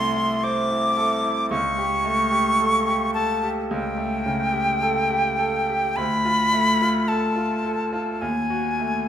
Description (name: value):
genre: classical, romantic duo for flute and grand piano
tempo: 51-56 BPM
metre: 4/4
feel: rubato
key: unclear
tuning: A4 = 441 Hz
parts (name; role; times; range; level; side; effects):
- silver concert flute; melody; 0.0-9.1 s; G5 to D6; -22 LUFS; left 1 dB; none
- bright grand piano; accompaniment; 0.0-9.1 s; C2 to C5; -24 LUFS; right 1 dB; none
room: wet recital hall reverb, RT60 1.4 s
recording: none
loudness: -20 LUFS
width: side -10 dB against mid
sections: 0.0-9.1 A section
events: none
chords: 0.0 Am/C; 1.5 A7/C#; 6.0 Dm; 8.2 B7/D# (rootless)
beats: 0.44 | 1.51 2.60 3.70 4.82 | 5.96 7.09 8.22